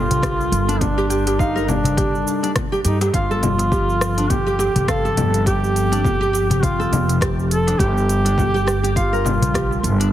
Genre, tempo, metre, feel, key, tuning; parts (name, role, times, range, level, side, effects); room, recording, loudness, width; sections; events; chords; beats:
organic downtempo; 103 BPM; 4/4; swing 57% on 16ths; G minor; A4 = 440 Hz
warm duduk; melody; 0.0-10.1 s; D4 to A4; -22 LUFS; right 1 dB; digital delay
warbly tape-like pad; sustained chords; 0.0-10.1 s; F3 to Bb4; -27 LUFS; right 1 dB; chorus, built-in reverb, sidechain pumping
upright bass; bass; 0.0-10.1 s; F1 to G2; -21 LUFS; equal
deep house drum kit; drums; 0.1-10.1 s; congas, hi-hat, rim click, shaker; -25 LUFS; left 2 dB
darbuka; percussion; 0.1-9.8 s; -26 LUFS; left 3 dB
nylon-string guitar; arpeggios; 0.2-10.1 s; D4 to F5; -24 LUFS; right 1 dB; ping-pong delay
electronic kick drum; drums; 0.2-9.7 s; -23 LUFS; equal
light reverb, studio ambience; heavily compressed radio sound, multiband compression; -16 LUFS; side -12 dB against mid
0.0-10.1 A section
0.0 Gm7; 3.1 F/G; 7.8 Gm7
0.23 | 0.81 1.39 1.97 2.56 | 3.14 3.72 4.30 4.89 | 5.47 6.05 6.63 7.22 | 7.80 8.38 8.96 9.55